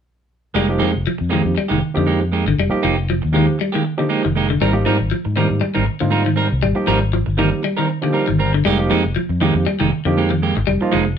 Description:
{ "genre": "afrobeat", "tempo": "118 BPM", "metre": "4/4", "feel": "swing 54% on 16ths", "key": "F dorian", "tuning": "A4 = 441 Hz", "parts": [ { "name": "clean electric guitar", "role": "stabs", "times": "0.5-11.1 s", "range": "G3 to Bb4", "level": "-21 LUFS", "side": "right 5 dB", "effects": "none" }, { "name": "fingered electric bass", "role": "bass", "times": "0.5-11.2 s", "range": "F1 to Ab2", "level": "-20 LUFS", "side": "left 1 dB", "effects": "none" }, { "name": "semi-hollow electric guitar", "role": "arpeggios", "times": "0.6-11.1 s", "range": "D3 to G3", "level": "-20 LUFS", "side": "left 2 dB", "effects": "none" }, { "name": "barky tine electric piano", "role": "accompaniment", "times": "0.7-11.0 s", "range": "F3 to G4", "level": "-22 LUFS", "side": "right 3 dB", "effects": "overdrive, medium tremolo" } ], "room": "moderate studio ambience, RT60 0.5 s", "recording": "band playing live in one room", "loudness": "-15 LUFS", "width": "side -8 dB against mid", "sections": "0.6-11.2 A section", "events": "none", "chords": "0.6 Fm11; 4.6 Abmaj9; 8.7 Fm11", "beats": "| 0.56 1.06 1.57 2.08 | 2.58 3.09 3.60 4.10 | 4.61 5.12 5.62 6.13 | 6.63 7.14 7.65 8.15 | 8.66 9.16 9.67 10.18 | 10.68" }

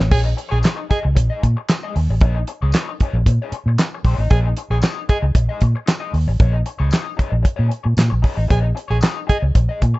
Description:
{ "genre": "funk", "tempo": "114 BPM", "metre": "4/4", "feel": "straight", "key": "Bb minor", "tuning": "A4 = 438 Hz", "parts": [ { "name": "raw garage guitar", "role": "accompaniment", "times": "0.0-10.0 s", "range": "Eb4 to Eb5", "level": "-29 LUFS", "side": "left 6 dB", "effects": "wah, overdrive, harmonic tremolo" }, { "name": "vintage muted fingered electric bass", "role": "bass", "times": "0.0-9.9 s", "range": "A1 to Bb2", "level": "-17 LUFS", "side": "equal", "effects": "none" }, { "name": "damped 70s drum kit", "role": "drums", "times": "0.0-9.9 s", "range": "crash cymbal, handclaps, hi-hat, kick drum, snare drum", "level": "-16 LUFS", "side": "equal", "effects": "none" }, { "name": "breathy tenor saxophone", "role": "second line", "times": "0.1-1.0, 4.3-5.2, 8.5-9.4 s", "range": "Ab4", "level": "-25 LUFS", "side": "right 3 dB", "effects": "none" }, { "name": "tambourine", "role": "percussion", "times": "0.6-9.1 s", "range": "none", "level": "-37 LUFS", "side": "left 1 dB", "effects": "none" } ], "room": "studio reverb", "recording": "rough home demo mix, nothing above 7.9 kHz", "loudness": "-16 LUFS", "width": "side -20 dB against mid", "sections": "0.1-10.0 A section", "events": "none", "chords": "0.1 Bbm7", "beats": "| 0.11 0.64 1.16 1.69 | 2.21 2.73 3.26 3.78 | 4.31 4.83 5.36 5.88 | 6.40 6.93 7.45 7.97 | 8.50 9.02 9.54" }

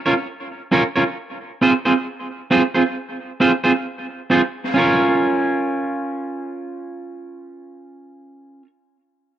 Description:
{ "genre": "reggae", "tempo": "67 BPM", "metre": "4/4", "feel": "straight", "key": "Bb minor", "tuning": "A4 = 437 Hz", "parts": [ { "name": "electric guitar at the edge of break-up", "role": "accompaniment", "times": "0.1-8.7 s", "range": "C4 to Db5", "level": "-18 LUFS", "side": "right 2 dB", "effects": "dub echo" } ], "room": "light reverb", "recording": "none", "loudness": "-16 LUFS", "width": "side -11 dB against mid", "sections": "0.0-4.8 A section; 4.8-8.3 B section", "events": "none", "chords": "0.0 Bbm; 1.2 Fm; 4.8 Bbm", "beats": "0.27 | 1.17 2.06 2.96 3.86 | 4.75 5.65 6.55 7.44" }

